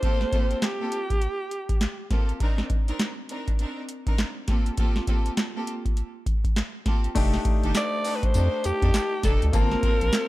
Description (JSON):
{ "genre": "R&B, new jack swing", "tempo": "101 BPM", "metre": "4/4", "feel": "swing 61% on 16ths", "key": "G minor", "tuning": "A4 = 440 Hz", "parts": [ { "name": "breathy alto saxophone", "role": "melody", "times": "0.0-2.1, 7.8-10.3 s", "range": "G4 to D5", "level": "-27 LUFS", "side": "equal", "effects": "none" }, { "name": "clear studio string section", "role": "stabs", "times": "0.0-10.0 s", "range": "Bb3 to Bb4", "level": "-32 LUFS", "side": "right 1 dB", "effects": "none" }, { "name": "booming analog drum machine", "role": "drums", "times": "0.0-10.3 s", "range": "crash cymbal, handclaps, hi-hat, kick drum, snare drum, tambourine", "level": "-24 LUFS", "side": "equal", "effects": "overdrive" }, { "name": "clear concert grand piano", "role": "accompaniment", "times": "7.1-10.3 s", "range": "A3 to A5", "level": "-30 LUFS", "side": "left 4 dB", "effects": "none" }, { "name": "round analog bass", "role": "bass", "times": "7.2-10.1 s", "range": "F1 to F2", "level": "-24 LUFS", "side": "equal", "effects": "none" } ], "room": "small room ambience", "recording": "dark, warm production", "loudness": "-22 LUFS", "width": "side -17 dB against mid", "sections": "0.0-7.2 A section; 7.2-10.3 B section", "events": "grand piano fill 10.1", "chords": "0.0 Gm11; 2.4 Cm9; 4.5 Gm11; 7.2 F13; 9.5 Gm11" }